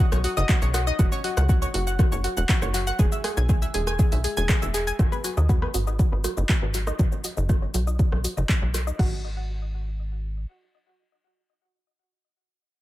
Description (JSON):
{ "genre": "melodic techno", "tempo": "120 BPM", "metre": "4/4", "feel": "straight", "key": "unclear", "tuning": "A4 = 440 Hz", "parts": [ { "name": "analog pluck", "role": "arpeggios", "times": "0.0-9.2 s", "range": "F#4 to G#6", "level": "-29 LUFS", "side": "left 1 dB", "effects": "chorus, sidechain pumping, tape echo" }, { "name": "tight sequencer bass", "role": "bass", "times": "0.0-10.5 s", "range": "E1 to D#2", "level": "-25 LUFS", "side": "equal", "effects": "sidechain pumping" }, { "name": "punchy analog drum machine", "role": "drums", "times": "0.1-9.1 s", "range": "crash cymbal, handclaps, hi-hat, rim click, shaker", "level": "-31 LUFS", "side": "equal", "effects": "overdrive, sidechain pumping on perc, sidechain pumping on hats, sidechain pumping on cymbals, dub echo" }, { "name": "electronic kick drum", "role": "drums", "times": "0.5-9.1 s", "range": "none", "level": "-21 LUFS", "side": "equal", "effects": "overdrive" } ], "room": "light reverb, digital ambience", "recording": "echo-heavy mix", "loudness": "-21 LUFS", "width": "side -16 dB against mid", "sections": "0.0-5.0 A section; 5.0-9.0 B section; 9.0-12.8 C section", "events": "drop 0.0-5.0; filter sweep on synth arpeggio sound 5.0-9.0", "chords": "0.0 Badd9; 1.0 F#5; 3.0 E; 5.0 G#m7; 7.0 Badd9; 9.0 F#sus2/G#", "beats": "0.49 | 0.99 1.49 1.99 2.49 | 2.99 3.49 3.99 4.49 | 4.99 5.49 5.99 6.49 | 6.99 7.49 7.99 8.49 | 8.99 9.49 9.99" }